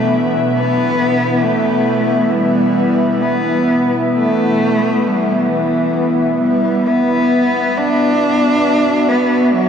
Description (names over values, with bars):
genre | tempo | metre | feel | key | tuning
ambient | 67 BPM | 4/4 | straight | unclear | A4 = 440 Hz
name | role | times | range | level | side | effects
warm cello | melody | 0.0-9.7 s | E3 to D4 | -16 LUFS | equal | diffuse ambient delay
airy breathy pad | sustained chords | 0.0-9.7 s | B2 to E5 | -15 LUFS | equal | chorus
drifting glass-harmonics texture | texture | 0.0-9.7 s | D4 to C#6 | -33 LUFS | equal | none
room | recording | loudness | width
wet cathedral reverb, RT60 6.2 s | dreamy mix soaked in reverb, cassette tape | -12 LUFS | side -7 dB against mid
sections
0.0-7.7 A section; 7.7-9.7 B section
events
none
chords
0.0 Em/B; 7.7 Bm